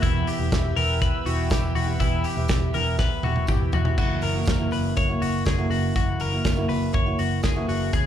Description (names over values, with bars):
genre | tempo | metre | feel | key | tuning
jangly indie pop | 121 BPM | 4/4 | straight | unclear | A4 = 440 Hz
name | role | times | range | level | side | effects
picked steel-string acoustic guitar | accompaniment | 0.0-8.1 s | F#2 to G#4 | -28 LUFS | right 3 dB | plate reverb, slapback echo
phased analog pad | sustained chords | 0.0-3.9 s | B4 to E6 | -37 LUFS | right 2 dB | phaser, chorus, plate reverb
twelve-string electric guitar | arpeggios | 0.0-8.1 s | E4 to C#5 | -28 LUFS | left 6 dB | tape echo, plate reverb, slapback echo
vintage muted picked electric bass | bass | 0.0-8.1 s | E1 to C#2 | -26 LUFS | equal | none
loose indie drum kit | drums | 0.0-8.1 s | crash cymbal, hi-hat, kick drum, snare drum, toms | -26 LUFS | equal | none
tambourine | percussion | 0.0-8.1 s | none | -49 LUFS | right 4 dB | none
room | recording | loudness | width
light reverb | live gig heard through the venue's PA, club reverb | -21 LUFS | side -10 dB against mid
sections
0.0-4.0 A section; 4.0-8.1 B section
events
drum fill 3.0-4.0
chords
0.0 Em; 4.0 F#7